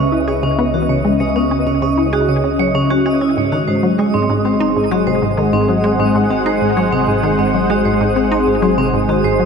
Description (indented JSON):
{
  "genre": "ambient, sequencer-driven space music",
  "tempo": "97 BPM",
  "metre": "4/4",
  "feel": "straight",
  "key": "unclear",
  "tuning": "A4 = 441 Hz",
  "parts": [
    { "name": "sweeping resonant pad", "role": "sustained chords", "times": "0.0-9.5 s", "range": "C#3 to G#5", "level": "-17 LUFS", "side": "left 1 dB", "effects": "chorus" },
    { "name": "vibraphone with medium hard mallets", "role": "arpeggios", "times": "0.0-9.4 s", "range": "G#3 to C#5", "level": "-20 LUFS", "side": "moving between equal and right 7 dB", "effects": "auto-pan, tape echo" },
    { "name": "resonant blip pluck", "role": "riff", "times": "0.0-9.5 s", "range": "G#2 to G#4", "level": "-17 LUFS", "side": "left 1 dB", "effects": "chorus, tape echo" },
    { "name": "analog drone", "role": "bass", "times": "0.0-9.5 s", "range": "G#1 to C#2", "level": "-26 LUFS", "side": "equal", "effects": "chorus" },
    { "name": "twinkling granular texture", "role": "texture", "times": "0.0-9.5 s", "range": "D#6", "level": "-30 LUFS", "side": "right 1 dB", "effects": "built-in reverb" }
  ],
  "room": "wet huge ambient reverb, RT60 7.3 s",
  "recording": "none",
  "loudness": "-13 LUFS",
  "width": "side -6 dB against mid",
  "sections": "0.0-9.5 A section",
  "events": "fade-in on synth texture 0.0-9.5",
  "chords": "0.0 C#m7; 3.4 G#7"
}